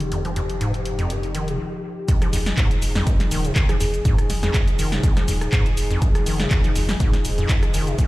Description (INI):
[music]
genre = acid house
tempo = 122 BPM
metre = 4/4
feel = swing 54% on 16ths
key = F minor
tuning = A4 = 440 Hz
[part]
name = warm analog pad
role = sustained chords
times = 0.0-8.1 s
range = F3 to Ab4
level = -29 LUFS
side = left 1 dB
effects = chorus, sidechain pumping
[part]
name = acid bass, square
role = riff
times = 0.0-8.1 s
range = F2 to F3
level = -26 LUFS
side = equal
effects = overdrive, lush chorus, digital delay
[part]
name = warm sub bass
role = bass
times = 0.0-7.9 s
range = Eb1 to F1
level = -26 LUFS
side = equal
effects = sidechain pumping
[part]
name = punchy analog drum machine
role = drums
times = 0.0-8.1 s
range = handclaps, hi-hat, rim click, shaker, snare drum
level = -28 LUFS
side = equal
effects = none
[part]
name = electronic kick drum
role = drums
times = 2.1-8.1 s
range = none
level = -19 LUFS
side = equal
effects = none
[part]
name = soft struck synth lead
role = melody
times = 3.7-4.5 s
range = Ab4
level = -32 LUFS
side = left 1 dB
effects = chorus, dub echo
[sound]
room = light reverb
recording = played on a big sound system in a bare room, stone room reverb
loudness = -18 LUFS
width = side -18 dB against mid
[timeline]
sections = 0.0-2.1 A section; 2.1-8.1 B section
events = filter sweep on analog synth pad 0.0-2.1; break 1.6-2.1; drop 2.1-8.1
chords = 0.0 F7(no3); 2.1 Fm7